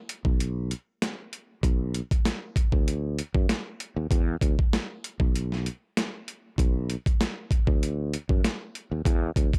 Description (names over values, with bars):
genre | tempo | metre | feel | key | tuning
hip hop, boom-bap hip-hop | 97 BPM | 4/4 | swing 55% on 16ths | unclear | A4 = 440 Hz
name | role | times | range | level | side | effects
boom bap sampler-style drum kit | drums | 0.1-9.6 s | hi-hat, kick drum, snare drum | -27 LUFS | equal | overdrive
sustaining fretless electric bass | bass | 0.2-9.5 s | B1 to F#2 | -31 LUFS | equal | tube saturation
room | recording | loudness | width
little or no reverb | dry, gritty hardware recording | -27 LUFS | mono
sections
0.0-6.6 A section; 6.6-9.6 A section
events
none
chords
none